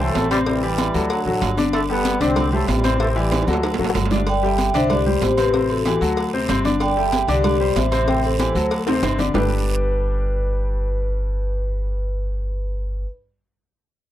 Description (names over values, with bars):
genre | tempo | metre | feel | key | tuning
latin, salsa | 189 BPM | 4/4 | straight | G major | A4 = 440 Hz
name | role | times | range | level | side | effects
clear trombone section | melody | 0.0-3.6 s | D3 to C4 | -23 LUFS | equal | none
clear grand piano | accompaniment | 0.0-13.0 s | C3 to G5 | -23 LUFS | left 3 dB | none
upright bass | bass | 0.0-13.0 s | G1 to D2 | -23 LUFS | equal | none
congas | percussion | 0.0-9.4 s | none | -27 LUFS | right 1 dB | none
cowbell and bongos | percussion | 0.1-9.4 s | none | -31 LUFS | left 6 dB | none
guiro | percussion | 0.2-9.4 s | none | -34 LUFS | right 8 dB | none
timbales and agogo bells | percussion | 0.2-9.4 s | none | -28 LUFS | right 8 dB | none
vibraphone with soft mallets | melody | 4.3-13.1 s | F#4 to G5 | -23 LUFS | left 1 dB | slapback echo
room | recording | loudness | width
little or no reverb | dry, close 1970s-style studio recording | -18 LUFS | side -12 dB against mid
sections
0.0-4.3 A section; 4.3-9.3 B section; 9.3-11.9 C section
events
drum fill 3.3-4.3, 8.9-9.3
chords
0.0 Am7; 1.1 D; 1.7 Gadd9; 2.4 Am7; 3.6 D; 4.3 Gsus2; 4.9 Csus2; 5.5 Am7; 6.2 D7; 6.8 Gsus2; 7.4 Cadd9; 8.1 Am7; 8.7 D7; 9.3 Gadd9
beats
0.15 | 0.47 0.79 1.10 1.42 | 1.74 2.05 2.37 2.69 | 3.00 3.32 3.64 3.95 | 4.27 4.59 4.91 5.22 | 5.54 5.86 6.17 6.49 | 6.81 7.12 7.44 7.76 | 8.08 8.39 8.71 9.03 | 9.35 9.66 9.98 10.30 | 10.61 10.93 11.25 11.57